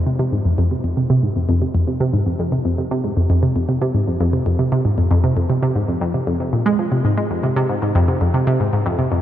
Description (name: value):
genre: ambient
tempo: 116 BPM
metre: 4/4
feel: straight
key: F minor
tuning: A4 = 440 Hz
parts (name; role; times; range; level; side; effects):
- analog pluck; solo; 0.0-9.2 s; F2 to Ab3; -16 LUFS; equal; chorus, tape echo
room: moderate huge ambient reverb, RT60 7.7 s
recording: dark, warm production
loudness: -16 LUFS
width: side -11 dB against mid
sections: 0.0-9.2 A section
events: none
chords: none